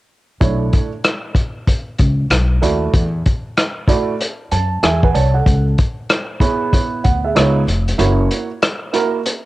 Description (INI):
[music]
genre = hip hop, jazz-hop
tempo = 95 BPM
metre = 4/4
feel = swing 64% on 16ths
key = B dorian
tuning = A4 = 440 Hz
[part]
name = dark grand piano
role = accompaniment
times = 0.4-9.2 s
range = A3 to A5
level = -19 LUFS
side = right 5 dB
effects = cassette tape
[part]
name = upright bass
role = bass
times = 0.4-8.3 s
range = E#1 to F#2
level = -16 LUFS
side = left 1 dB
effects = none
[part]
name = vintage drum kit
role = drums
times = 0.4-9.4 s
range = hi-hat, kick drum, rim click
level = -17 LUFS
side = left 1 dB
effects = vintage 12-bit sampler grit, cassette tape
[sound]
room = light reverb, small room ambience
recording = home recording on cassette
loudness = -14 LUFS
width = side -17 dB against mid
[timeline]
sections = 0.4-9.5 A section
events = grand piano fill 4.2-5.5; kick muted 8.0-9.5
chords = 0.4 Bm11; 2.3 B7; 2.9 E9sus4; 5.5 C#m7; 7.4 C#9; 8.0 F#7